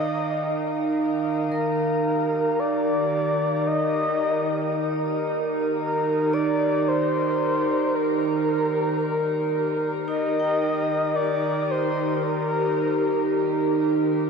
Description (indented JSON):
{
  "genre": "ambient",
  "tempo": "free time",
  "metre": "none",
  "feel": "none",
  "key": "Eb major",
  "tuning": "A4 = 437 Hz",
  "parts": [
    { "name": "breathy flute-like synth lead", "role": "melody", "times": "0.0-13.8 s", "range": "Bb4 to Eb5", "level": "-25 LUFS", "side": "left 1 dB", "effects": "chorus, shimmer reverb, tape echo" },
    { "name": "warbly tape-like pad", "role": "sustained chords", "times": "0.0-14.3 s", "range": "Eb4 to G5", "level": "-24 LUFS", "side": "right 2 dB", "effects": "chorus, built-in reverb, shimmer reverb" },
    { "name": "analog drone", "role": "drone", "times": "0.0-14.3 s", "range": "Eb3", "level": "-31 LUFS", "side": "right 1 dB", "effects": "chorus" },
    { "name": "vibraphone with hard mallets", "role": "arpeggios", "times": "1.5-14.3 s", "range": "Eb4 to G5", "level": "-38 LUFS", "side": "equal", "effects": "shimmer reverb, tape echo" }
  ],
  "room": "wet cathedral reverb, RT60 5.2 s",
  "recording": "in a vast, echoing space",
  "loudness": "-21 LUFS",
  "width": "side -5 dB against mid",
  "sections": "0.0-1.5 A section; 1.5-14.3 B section",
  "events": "fade-in on vibraphone 1.5-14.3",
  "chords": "0.0 Eb",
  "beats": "free time"
}